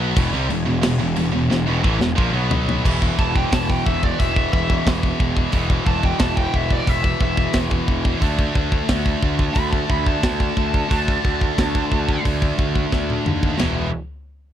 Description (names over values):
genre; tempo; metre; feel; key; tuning
heavy metal; 89 BPM; 4/4; straight; unclear; A4 = 440 Hz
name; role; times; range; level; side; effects
heavy high-gain guitar; riff; 0.0-13.9 s; E2 to D4; -25 LUFS; right 13 dB; distortion
scooped high-gain guitar; riff; 0.0-13.9 s; E2 to D4; -25 LUFS; left 11 dB; distortion
fuzz picked electric bass; bass; 0.0-13.9 s; E1 to D#2; -24 LUFS; equal; overdrive
tight metal drum kit; drums; 0.2-13.8 s; crash cymbal, hi-hat, kick drum, ride cymbal, snare drum, toms; -21 LUFS; equal; none
high-gain lead guitar; melody; 3.2-12.2 s; D5 to B5; -25 LUFS; right 1 dB; distortion
room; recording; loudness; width
little or no reverb; dark, warm production; -17 LUFS; side -10 dB against mid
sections
0.0-2.8 A section; 2.8-13.6 B section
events
drum fill 1.5-2.8, 12.9-13.6; lead electric guitar solo 2.8-13.6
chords
0.0 E5; 8.2 D5; 13.6 E5